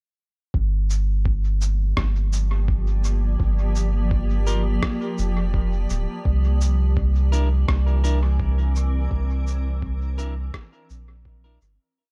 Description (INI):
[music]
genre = ambient dub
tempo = 84 BPM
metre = 4/4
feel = swing 54% on 16ths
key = G dorian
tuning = A4 = 445 Hz
[part]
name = granular cloud pad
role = sustained chords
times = 2.1-12.0 s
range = E3 to D5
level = -33 LUFS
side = equal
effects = built-in reverb
[part]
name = soft dub sub bass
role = bass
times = 0.5-11.8 s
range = D1 to C2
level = -23 LUFS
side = equal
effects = none
[part]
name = electronic kick drum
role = drums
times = 0.5-11.4 s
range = none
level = -27 LUFS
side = equal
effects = overdrive
[part]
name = electronic shaker and rim click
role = drums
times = 0.9-11.8 s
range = none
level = -34 LUFS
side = equal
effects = overdrive, dub echo
[part]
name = clean electric guitar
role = stabs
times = 4.5-11.6 s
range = D4 to Bb4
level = -36 LUFS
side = equal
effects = dub echo
[sound]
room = digital ambience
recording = echo-heavy mix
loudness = -22 LUFS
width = mono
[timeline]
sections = 0.5-12.0 groove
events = fade-out 8.2-12.0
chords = 0.5 Gm7; 6.3 C9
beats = | 0.54 1.26 1.97 2.68 | 3.40 4.11 4.83 5.54 | 6.26 6.97 7.68 8.40 | 9.11 9.83 10.54 11.26